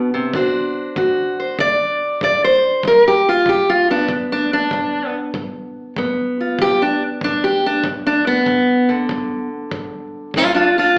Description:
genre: acoustic country blues, solo or duo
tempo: 96 BPM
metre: 4/4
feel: swing 66% on 8ths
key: G major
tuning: A4 = 441 Hz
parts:
  - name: fingerpicked steel-string acoustic guitar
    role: melody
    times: 0.0-11.0 s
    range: G2 to D5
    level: -18 LUFS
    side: equal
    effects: slapback echo
  - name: kick drum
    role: drums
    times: 0.3-10.5 s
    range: none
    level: -33 LUFS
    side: equal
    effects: none
room: moderate club reverb, RT60 0.7 s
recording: live gig heard through the venue's PA, club reverb, AM radio sound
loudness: -17 LUFS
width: mono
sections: 0.0-2.8 A section; 2.8-11.0 B section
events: steel-string acoustic guitar solo 2.8-11.0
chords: 0.3 D7; 2.8 G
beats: | 0.34 0.97 1.59 2.22 | 2.84 3.47 4.09 4.72 | 5.35 5.97 6.60 7.22 | 7.85 8.47 9.10 9.72 | 10.35 10.97

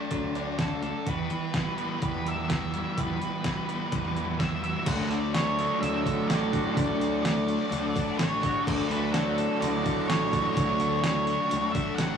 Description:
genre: rock, shoegaze and dream pop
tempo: 126 BPM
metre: 4/4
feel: straight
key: D major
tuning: A4 = 440 Hz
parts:
  - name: octave-fuzz lead guitar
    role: melody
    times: 0.0-12.2 s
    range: A4 to A5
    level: -32 LUFS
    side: right 1 dB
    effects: distortion
  - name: twangy electric guitar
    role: arpeggios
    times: 0.0-12.2 s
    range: F#3 to F#4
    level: -39 LUFS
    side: right 5 dB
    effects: none
  - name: overdriven electric guitar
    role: riff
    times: 0.0-12.2 s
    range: D3 to D4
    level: -32 LUFS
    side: right 5 dB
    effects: none
  - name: thick fuzz guitar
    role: riff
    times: 0.0-12.2 s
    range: D3 to D4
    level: -31 LUFS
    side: left 5 dB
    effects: distortion
  - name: growling picked electric bass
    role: bass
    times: 0.1-12.2 s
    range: A1 to E2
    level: -33 LUFS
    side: right 1 dB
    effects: overdrive
  - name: detuned 8-bit digital drum machine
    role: drums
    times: 0.1-12.1 s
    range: crash cymbal, hi-hat, kick drum, snare drum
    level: -31 LUFS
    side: right 1 dB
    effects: none
  - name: phased string machine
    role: sustained chords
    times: 4.9-12.2 s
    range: A4 to C#6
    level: -40 LUFS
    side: left 2 dB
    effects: ensemble chorus, phaser
room: wet stone room reverb, RT60 1.0 s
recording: rough rehearsal-room recording, tube saturation, small room ambience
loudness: -25 LUFS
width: side -7 dB against mid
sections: 0.0-4.9 A section; 4.9-12.2 B section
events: none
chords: 0.0 D; 1.1 Em; 4.9 Dmaj7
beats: 0.11 0.59 | 1.06 1.54 2.02 2.49 | 2.97 3.45 3.92 4.40 | 4.87 5.35 5.82 6.30 | 6.77 7.24 7.72 8.19 | 8.66 9.14 9.61 10.09 | 10.56 11.04 11.51 11.98

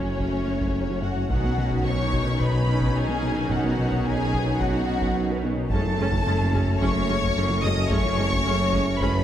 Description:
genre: cinematic, hybrid orchestral and electronic film score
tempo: 109 BPM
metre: 4/4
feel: straight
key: F# dorian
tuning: A4 = 440 Hz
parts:
  - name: dark symphonic violin section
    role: melody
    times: 0.0-9.2 s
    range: C#5 to D#6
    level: -30 LUFS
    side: left 2 dB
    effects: none
  - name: dark symphonic violin section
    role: second line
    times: 0.0-9.2 s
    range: C#4 to D#5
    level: -31 LUFS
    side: left 4 dB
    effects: none
  - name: warm studio viola section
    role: accompaniment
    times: 0.0-9.1 s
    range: G#3 to F#4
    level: -33 LUFS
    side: right 2 dB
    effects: none
  - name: glassy FM pad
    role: sustained chords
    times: 0.0-9.2 s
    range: F#3 to C#5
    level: -33 LUFS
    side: left 1 dB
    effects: ensemble chorus, built-in reverb, tremolo
  - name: warm French horn section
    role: sustained chords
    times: 0.0-9.2 s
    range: D#3 to C#4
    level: -32 LUFS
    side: left 2 dB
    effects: none
  - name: clear symphonic cello section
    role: bass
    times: 0.0-9.2 s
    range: F#2 to B2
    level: -31 LUFS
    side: right 2 dB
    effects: none
  - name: dark detuned saw bass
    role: bass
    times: 0.0-9.2 s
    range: F#1 to B1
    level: -34 LUFS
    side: equal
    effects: none
  - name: dark tuba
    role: bass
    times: 0.0-9.2 s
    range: F#1 to B1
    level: -31 LUFS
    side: right 4 dB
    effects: none
  - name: rich studio double bass section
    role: bass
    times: 0.0-9.2 s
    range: F#1 to B1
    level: -32 LUFS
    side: right 3 dB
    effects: none
  - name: smooth gliding synth bass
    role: riff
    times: 0.1-9.2 s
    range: F#2 to B3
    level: -28 LUFS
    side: left 2 dB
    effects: none
  - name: taiko ensemble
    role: drums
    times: 0.2-9.2 s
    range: none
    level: -31 LUFS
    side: equal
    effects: none
room: moderate scoring stage reverb, RT60 1.9 s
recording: none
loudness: -21 LUFS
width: side -10 dB against mid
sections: 0.0-9.2 A section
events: none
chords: 0.0 F#m; 1.3 Badd9; 5.7 F#madd9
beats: 0.21 0.76 | 1.31 1.86 2.41 2.96 | 3.51 4.06 4.61 5.16 | 5.71 6.26 6.81 7.36 | 7.91 8.46 9.02

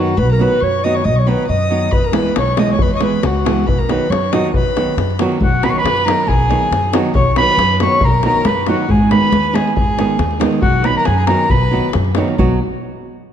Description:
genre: balkan folk, Balkan wedding band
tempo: 138 BPM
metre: 2/4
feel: swing 54% on 16ths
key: B major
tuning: A4 = 440 Hz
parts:
  - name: dark clarinet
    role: melody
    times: 0.0-11.9 s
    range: F#4 to C#6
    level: -18 LUFS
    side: right 1 dB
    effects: none
  - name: clear violin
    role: second line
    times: 0.0-11.9 s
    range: F#4 to D#6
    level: -24 LUFS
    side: left 4 dB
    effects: none
  - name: nylon-string guitar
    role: accompaniment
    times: 0.0-12.6 s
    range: D#3 to G#4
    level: -19 LUFS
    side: right 4 dB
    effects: none
  - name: upright bass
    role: bass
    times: 0.0-12.6 s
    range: G#1 to F#2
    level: -18 LUFS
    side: equal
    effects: none
  - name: davul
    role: percussion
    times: 1.9-12.6 s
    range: none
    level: -19 LUFS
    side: left 2 dB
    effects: none
room: moderate concert hall reverb, RT60 2.0 s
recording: dark, warm production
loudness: -12 LUFS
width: side -9 dB against mid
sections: 0.0-5.4 A section; 5.4-12.4 B section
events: none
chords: 0.0 B; 1.9 E; 3.7 B; 8.9 G#m; 10.6 B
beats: | 0.17 0.60 | 1.04 1.48 | 1.92 2.36 | 2.79 3.23 | 3.67 4.10 | 4.54 4.97 | 5.41 5.84 | 6.28 6.71 | 7.14 7.58 | 8.01 8.45 | 8.88 9.32 | 9.76 10.19 | 10.63 11.07 | 11.50 11.94 | 12.38

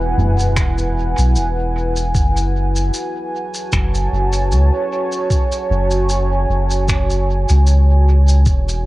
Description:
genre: ambient dub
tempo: 76 BPM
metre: 4/4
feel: swing 55% on 16ths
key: F# minor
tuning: A4 = 440 Hz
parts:
  - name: deep dark ambient pad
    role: sustained chords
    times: 0.0-8.9 s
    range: E4 to A5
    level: -21 LUFS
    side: right 1 dB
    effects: chorus, built-in reverb, cassette tape
  - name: soft dub sub bass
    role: bass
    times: 0.0-8.9 s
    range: E1 to C#2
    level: -15 LUFS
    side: equal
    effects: none
  - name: soft-mallet drum kit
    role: drums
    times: 0.2-8.8 s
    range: finger snaps, shaker, toms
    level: -22 LUFS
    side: equal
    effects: cassette tape, dub echo
  - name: electronic kick drum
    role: drums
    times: 0.6-8.6 s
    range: none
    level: -18 LUFS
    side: equal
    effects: cassette tape
room: small room ambience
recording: home recording on cassette, faint mains hum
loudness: -14 LUFS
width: side -18 dB against mid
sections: 0.0-8.9 A section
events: none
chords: 0.0 Eadd9; 2.1 F#m11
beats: 0.57 1.36 | 2.15 2.94 3.73 4.51 | 5.30 6.09 6.88 7.67 | 8.46

